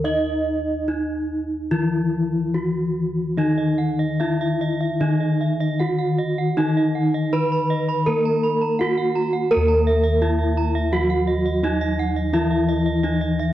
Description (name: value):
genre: gamelan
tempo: 72-85 BPM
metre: 4/4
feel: straight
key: Eb pelog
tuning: A4 = 440 Hz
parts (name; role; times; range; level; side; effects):
- gamelan-type bronze metallophone; melody; 0.0-13.5 s; Eb4 to Eb5; -23 LUFS; right 1 dB; none
- gamelan-type bronze metallophone; accompaniment; 0.0-13.5 s; Eb3 to Eb4; -24 LUFS; left 3 dB; none
- gamelan-type bossed gongs; bass; 0.0-13.5 s; Eb2 to Eb5; -24 LUFS; equal; none
- gamelan-type bronze metallophone; arpeggios; 3.4-13.5 s; Eb5 to Cb6-20c; -28 LUFS; right 4 dB; none
room: light reverb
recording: worn, warbling old tape, cassette tape, warbly pitch drift, nothing above 10.9 kHz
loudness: -19 LUFS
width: side -13 dB against mid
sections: 0.0-9.5 A section; 9.5-13.5 B section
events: none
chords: none